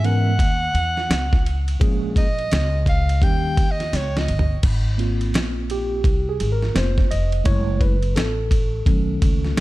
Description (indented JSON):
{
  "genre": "hip hop, jazz-hop",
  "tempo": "85 BPM",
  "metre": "4/4",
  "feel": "swing 62% on 16ths",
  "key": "unclear",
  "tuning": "A4 = 440 Hz",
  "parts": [
    { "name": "warm soprano saxophone", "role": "melody", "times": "0.0-4.6 s", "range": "Db5 to G5", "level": "-26 LUFS", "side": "right 1 dB", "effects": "analog delay" },
    { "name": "tine electric piano", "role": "accompaniment", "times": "0.0-9.6 s", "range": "Eb3 to Eb5", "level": "-26 LUFS", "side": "right 1 dB", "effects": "medium stereo tremolo" },
    { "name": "upright bass", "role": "bass", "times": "0.0-9.6 s", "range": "F1 to G#2", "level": "-22 LUFS", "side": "equal", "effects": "none" },
    { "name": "dusty soul sampler-style drum kit", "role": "drums", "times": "0.0-9.6 s", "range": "crash cymbal, hi-hat, kick drum, ride cymbal, snare drum, toms", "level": "-20 LUFS", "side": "equal", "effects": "none" }
  ],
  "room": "little or no reverb",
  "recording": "echo-heavy mix",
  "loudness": "-18 LUFS",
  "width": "side -18 dB against mid",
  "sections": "0.0-4.6 A section; 4.6-9.6 A section",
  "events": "soprano saxophone solo 0.0-4.6; drum fill 3.9-4.6; tine electric piano solo 4.6-9.6",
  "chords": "0.0 E6; 1.8 Bbm7; 3.2 Eb7; 4.6 Ab6; 7.5 Gbm7; 8.9 B7"
}